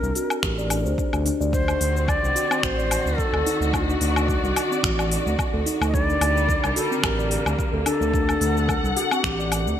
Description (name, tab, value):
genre	organic downtempo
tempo	109 BPM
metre	4/4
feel	swing 54% on 16ths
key	unclear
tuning	A4 = 440 Hz
part	Native American-style cedar flute	melody	0.0-9.8 s	F#4 to Eb5	-26 LUFS	equal	digital delay
part	smooth gliding synth bass	bass	0.0-9.7 s	A1 to D2	-25 LUFS	right 1 dB	sidechain pumping
part	deep house drum kit	drums	0.0-9.8 s	cabasa, finger snaps, hi-hat, woodblock	-27 LUFS	left 2 dB	gated reverb
part	steel tongue drum	arpeggios	0.2-9.8 s	C4 to D5	-27 LUFS	left 1 dB	ping-pong delay
part	electronic kick drum	drums	0.4-9.4 s	none	-27 LUFS	right 1 dB	none
part	muted studio string section	sustained chords	1.5-9.8 s	D3 to F#5	-29 LUFS	left 2 dB	sidechain pumping
room	light reverb, small room ambience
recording	bright 1980s-style digital production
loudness	-20 LUFS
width	side -10 dB against mid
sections	0.0-9.8 A section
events	none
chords	0.0 Gm (rootless); 1.5 D7b9; 5.9 Gm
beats	0.43 0.98 | 1.53 2.08 2.63 3.18 | 3.73 4.29 4.83 5.39 | 5.94 6.49 7.04 7.59 | 8.14 8.69 9.24 9.79